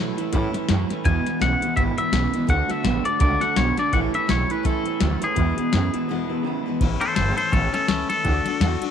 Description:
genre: rockabilly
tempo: 167 BPM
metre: 4/4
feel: swing 58% on 8ths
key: A major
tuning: A4 = 437 Hz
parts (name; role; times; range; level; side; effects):
- picked steel-string acoustic guitar; accompaniment; 0.0-8.9 s; E2 to F#4; -28 LUFS; left 11 dB; none
- electric guitar through a small old amp; riff; 0.0-6.8 s; E2 to B3; -27 LUFS; right 14 dB; wide subtle chorus
- upright bass; bass; 0.0-8.8 s; G1 to B2; -24 LUFS; right 2 dB; none
- soft vintage rhythm box; drums; 0.2-8.9 s; hi-hat, kick drum, ride cymbal, snare drum; -26 LUFS; left 2 dB; overdrive
- twangy electric guitar; melody; 1.1-8.9 s; C#4 to G#5; -24 LUFS; left 3 dB; tape echo
room: light reverb, digital ambience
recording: 1960s-style stereo with parts hard left and right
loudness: -19 LUFS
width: side -8 dB against mid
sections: 0.0-6.8 A section; 6.8-8.9 B section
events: break 6.1-6.8; clean electric guitar solo 6.8-8.9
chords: 0.0 A; 1.1 E; 2.5 D; 3.9 A; 5.4 E; 6.8 A; 8.2 D

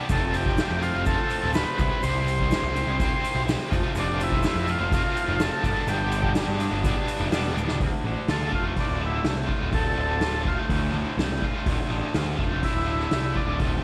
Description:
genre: psychedelic rock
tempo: 125 BPM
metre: 4/4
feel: straight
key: D dorian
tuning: A4 = 442 Hz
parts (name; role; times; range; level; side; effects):
- raw garage guitar; riff; 0.0-13.8 s; D2 to C5; -31 LUFS; equal; overdrive, harmonic tremolo
- combo organ; melody; 0.1-13.6 s; D4 to C5; -31 LUFS; equal; slapback echo
- fuzz picked electric bass; bass; 0.1-13.8 s; D1 to G2; -30 LUFS; equal; overdrive
- soft-mallet drum kit; drums; 0.1-13.7 s; hi-hat, kick drum, snare drum, toms; -30 LUFS; equal; none
- tube shaker; percussion; 0.1-7.7 s; none; -52 LUFS; equal; none
room: light reverb, small room ambience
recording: lossy compression artefacts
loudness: -25 LUFS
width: mono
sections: 0.0-7.8 A section; 7.8-13.8 B section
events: drum fill 7.6; transistor combo organ solo 7.8-13.8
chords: 0.1 F; 1.8 Cmaj7; 3.7 F; 5.6 G; 7.8 Dm

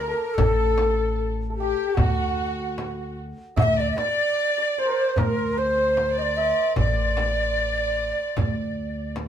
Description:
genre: Persian modal ensemble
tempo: 75 BPM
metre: 4/4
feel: straight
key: D dastgah homayun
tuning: A4 = 443 Hz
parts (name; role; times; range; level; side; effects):
- breathy bright ney; melody; 0.0-9.1 s; F#4 to F#5-47c; -24 LUFS; equal; none
- dark symphonic violin section; second line; 0.0-9.1 s; F#4 to Eb5+45c; -31 LUFS; left 3 dB; none
- santur; second line; 0.0-9.2 s; F#4 to Eb5+45c; -32 LUFS; right 2 dB; none
- upright bass; bass; 0.0-9.3 s; A1 to D2; -27 LUFS; left 1 dB; none
- tombak; percussion; 0.2-9.3 s; none; -29 LUFS; right 3 dB; none
- frame drum; percussion; 0.4-9.3 s; none; -27 LUFS; left 2 dB; none
room: moderate studio reverb, RT60 0.7 s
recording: band playing live in one room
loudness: -21 LUFS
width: side -9 dB against mid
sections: 0.0-9.3 A section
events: none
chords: none

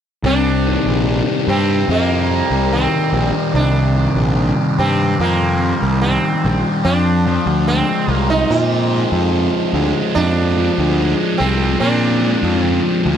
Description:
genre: rock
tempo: 73 BPM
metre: 4/4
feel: straight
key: C minor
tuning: A4 = 443 Hz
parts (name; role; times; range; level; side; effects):
- fuzz picked electric bass; bass; 0.2-13.2 s; Bb1 to Bb2; -18 LUFS; equal; overdrive
- sitar; melody; 0.3-13.0 s; Bb3 to F4; -21 LUFS; right 4 dB; tape echo
- fuzz guitar; riff; 0.3-13.2 s; C3 to G4; -17 LUFS; left 1 dB; distortion, phaser
room: little or no reverb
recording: dry, close 1970s-style studio recording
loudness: -14 LUFS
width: side -9 dB against mid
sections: 0.2-13.2 A section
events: none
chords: 0.2 Cm; 6.9 Fm

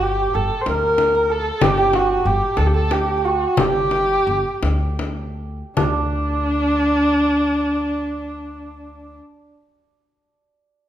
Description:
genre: Persian modal ensemble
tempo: 50-63 BPM (dotted quarters)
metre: 6/8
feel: straight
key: G avaz esfahan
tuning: A4 = 439 Hz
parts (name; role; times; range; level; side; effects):
- warm kamancheh; melody; 0.0-9.2 s; D4 to C5; -19 LUFS; equal; none
- santur; second line; 0.0-9.5 s; D4 to C5; -25 LUFS; right 5 dB; none
- upright bass; bass; 0.0-9.2 s; G1 to D2; -24 LUFS; equal; none
- frame drum; percussion; 0.7-6.1 s; none; -23 LUFS; left 4 dB; none
room: moderate recital hall reverb, RT60 1.5 s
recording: minimal, uncompressed stereo recording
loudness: -17 LUFS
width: side -11 dB against mid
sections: 0.0-5.8 A section; 5.8-10.5 B section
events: slowing down 1.6-5.8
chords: none

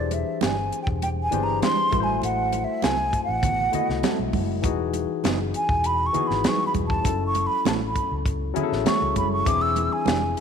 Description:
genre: lush 1970s-style soul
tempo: 100 BPM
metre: 4/4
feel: straight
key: E major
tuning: A4 = 440 Hz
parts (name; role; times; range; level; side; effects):
- breathy concert flute; melody; 0.0-10.4 s; D5 to E6; -25 LUFS; right 1 dB; none
- barky tine electric piano; accompaniment; 0.0-10.4 s; E3 to D#5; -28 LUFS; left 12 dB; overdrive
- vintage muted fingered electric bass; bass; 0.0-10.3 s; E1 to C#2; -29 LUFS; equal; none
- tight funk drum kit; drums; 0.1-10.4 s; hi-hat, kick drum, snare drum; -27 LUFS; equal; none
- congas; percussion; 0.1-10.2 s; none; -32 LUFS; right 11 dB; none
- mellow electric guitar; riff; 0.4-10.2 s; E3 to A4; -32 LUFS; right 10 dB; none
room: moderate echo chamber reverb, RT60 2.2 s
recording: 1960s-style stereo with parts hard left and right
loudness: -21 LUFS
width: side -7 dB against mid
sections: 0.0-10.4 A section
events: flute solo 0.0-10.4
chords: 0.0 E7alt; 1.9 Am6; 4.6 Emaj9; 7.0 F#m7; 9.5 E7alt

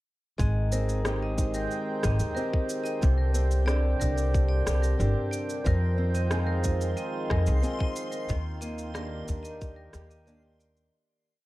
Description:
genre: folktronica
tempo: 91 BPM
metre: 4/4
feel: straight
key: Eb major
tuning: A4 = 441 Hz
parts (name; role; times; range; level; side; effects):
- vibraphone with hard mallets; second line; 0.4-11.0 s; Bb4 to Eb5; -36 LUFS; left 2 dB; tape echo
- pedal harmonium; sustained chords; 0.4-10.9 s; D3 to G5; -36 LUFS; right 2 dB; none
- fingerpicked acoustic archtop guitar; arpeggios; 0.4-11.5 s; C3 to Ab4; -34 LUFS; right 1 dB; tape echo
- upright bass; bass; 0.4-10.9 s; G1 to F2; -26 LUFS; equal; none
- electronic cabasa and rim click; drums; 0.4-10.9 s; none; -37 LUFS; equal; none
- electronic kick drum; drums; 0.4-9.7 s; none; -27 LUFS; equal; none
- backwards swelling texture; texture; 6.8-10.9 s; C6; -46 LUFS; left 2 dB; built-in reverb
room: little or no reverb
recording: dark, warm production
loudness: -25 LUFS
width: side -18 dB against mid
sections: 0.4-10.9 groove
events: fade-out 7.4-10.9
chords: 0.4 Abmaj7; 3.0 Csus2; 5.7 Fm7; 8.3 Ebmaj7

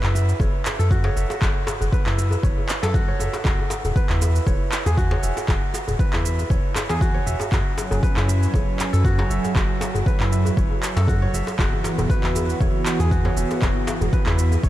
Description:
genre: afro house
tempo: 118 BPM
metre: 4/4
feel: swing 54% on 16ths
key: F# minor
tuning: A4 = 441 Hz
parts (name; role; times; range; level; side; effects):
- kora; arpeggios; 0.0-14.7 s; C#4 to E5; -28 LUFS; right 2 dB; sidechain pumping, diffuse ambient delay
- smooth synth bass; bass; 0.0-14.7 s; E1 to F#2; -22 LUFS; equal; sidechain pumping
- electronic handclaps and shaker; drums; 0.0-14.7 s; none; -29 LUFS; right 1 dB; overdrive
- djembe; percussion; 0.0-14.6 s; none; -30 LUFS; left 2 dB; none
- electronic kick drum; drums; 0.4-14.7 s; none; -22 LUFS; equal; overdrive
- warm analog pad; sustained chords; 7.5-14.7 s; E3 to G#5; -27 LUFS; right 2 dB; chorus, sidechain pumping
room: light reverb, digital ambience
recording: none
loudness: -18 LUFS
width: side -14 dB against mid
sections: 0.0-14.7 A section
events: none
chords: 0.0 F#m7; 3.5 E; 7.5 F#m9; 11.6 E

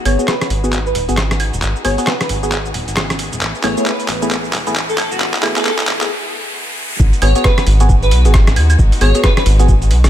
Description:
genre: UK garage, two-step garage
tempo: 134 BPM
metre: 4/4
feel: swing 60% on 16ths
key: unclear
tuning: A4 = 440 Hz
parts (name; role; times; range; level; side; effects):
- clear chamber violin section; sustained chords; 0.0-10.1 s; G#3 to G#4; -29 LUFS; left 3 dB; sidechain pumping, low-pass filter
- riser; sound effects; 0.0-7.0 s; none; -29 LUFS; right 1 dB; none
- airy dreamy lead; melody; 0.1-9.4 s; F#4 to C#5; -22 LUFS; equal; chorus, dub echo
- percussive organ stab; stabs; 0.1-9.7 s; A3 to G#4; -21 LUFS; equal; chorus, phaser, cassette tape, dub echo
- rubbery square bass; bass; 0.1-10.1 s; D#1 to D#2; -15 LUFS; equal; sidechain pumping
- boom bap sampler-style drum kit; drums; 0.1-10.1 s; cabasa, claves, handclaps, hi-hat, rim click; -19 LUFS; right 1 dB; overdrive, small room ambience
- electronic kick drum; drums; 7.0-9.8 s; none; -13 LUFS; equal; overdrive, small room ambience
room: light reverb, digital ambience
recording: high-pass filter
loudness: -12 LUFS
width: side -12 dB against mid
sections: 0.0-7.0 A section; 7.0-10.1 B section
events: build-up 0.0-7.0; drum fill 0.0-6.1; riser 0.0-7.0; filter sweep on synth stab 0.0-7.0; filter sweep on digital synth lead 0.0-7.0; filter sweep 0.0-7.0; break 6.1-7.0; drop 7.0-10.1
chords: 0.0 G#m7; 3.4 Eadd11; 7.0 G#m7

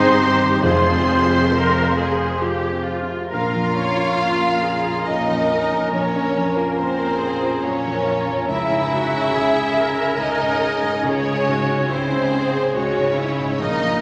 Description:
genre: cinematic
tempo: 70 BPM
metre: 3/4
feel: rubato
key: Bb minor from 3.3 s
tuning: A4 = 440 Hz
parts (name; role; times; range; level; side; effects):
- bright symphonic violin section; melody; 0.0-14.0 s; Bb4 to C6; -29 LUFS; equal; none
- clear studio violin section; second line; 0.0-14.0 s; Bb3 to C5; -28 LUFS; equal; none
- hollow large flute ensemble; second line; 0.0-14.0 s; Bb4 to F5; -28 LUFS; equal; none
- mellow oboe; second line; 0.0-14.0 s; C5 to Bb5; -30 LUFS; equal; none
- warm clarinet; second line; 0.0-14.0 s; Db4 to C5; -31 LUFS; equal; none
- clear studio viola section; accompaniment; 0.0-14.0 s; Gb3 to Db5; -28 LUFS; equal; none
- dark baby grand piano; accompaniment; 0.0-14.0 s; Bb1 to F5; -28 LUFS; equal; none
- dark French horn section; sustained chords; 0.0-14.0 s; Db3 to Db4; -31 LUFS; equal; none
- concert harp; arpeggios; 0.0-14.0 s; F2 to Db6; -33 LUFS; equal; none
- rich studio cello section; bass; 0.0-14.0 s; F2 to Db3; -31 LUFS; equal; none
- rich studio double bass section; bass; 0.0-14.0 s; F1 to Db2; -35 LUFS; equal; none
- timpani; percussion; 0.6-1.9 s; F2; -29 LUFS; equal; none
room: wet scoring stage reverb, RT60 1.9 s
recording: none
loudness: -20 LUFS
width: mono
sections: 0.0-3.3 A section; 3.3-14.0 B section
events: none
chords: 0.0 Ab; 0.6 Fm; 3.3 Bbm; 8.5 Dbm

